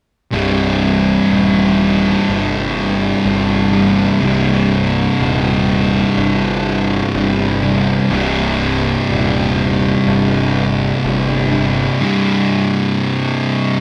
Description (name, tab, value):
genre	metal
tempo	62 BPM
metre	4/4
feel	straight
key	C minor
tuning	A4 = 442 Hz
part	thick fuzz guitar	riff	0.3-13.8 s	C2 to C3	-18 LUFS	equal	distortion
part	thick fuzz guitar	riff	0.3-13.8 s	C2 to C3	-21 LUFS	equal	distortion
part	fuzz picked electric bass	bass	0.3-11.9 s	C1 to G1	-22 LUFS	equal	overdrive
room	light reverb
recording	band playing live in one room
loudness	-15 LUFS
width	mono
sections	0.3-13.8 A section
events	none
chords	0.3 Cm